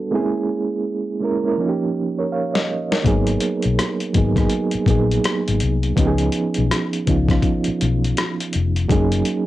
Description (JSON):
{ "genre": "R&B, neo-soul", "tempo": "82 BPM", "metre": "4/4", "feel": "swing 61% on 16ths", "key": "unclear", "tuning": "A4 = 440 Hz", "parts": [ { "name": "mellow reed electric piano", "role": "accompaniment", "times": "0.0-9.5 s", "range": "E#3 to E#5", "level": "-20 LUFS", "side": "right 3 dB", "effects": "fast tremolo, cassette tape" }, { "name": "boom bap sampler-style drum kit", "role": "drums", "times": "2.6-9.5 s", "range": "hi-hat, kick drum, rim click, snare drum", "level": "-22 LUFS", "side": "left 2 dB", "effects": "cassette tape" }, { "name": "vintage muted fingered electric bass", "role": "bass", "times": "3.1-9.2 s", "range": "E#1 to C#2", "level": "-20 LUFS", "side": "left 2 dB", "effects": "none" } ], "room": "light reverb", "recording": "home recording on cassette", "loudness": "-17 LUFS", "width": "side -14 dB against mid", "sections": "0.0-9.5 A section", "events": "drum fill 1.6-3.0", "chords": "0.1 A#m7b5; 1.6 D#7; 3.0 G#m7; 6.0 C#7; 8.9 F#6" }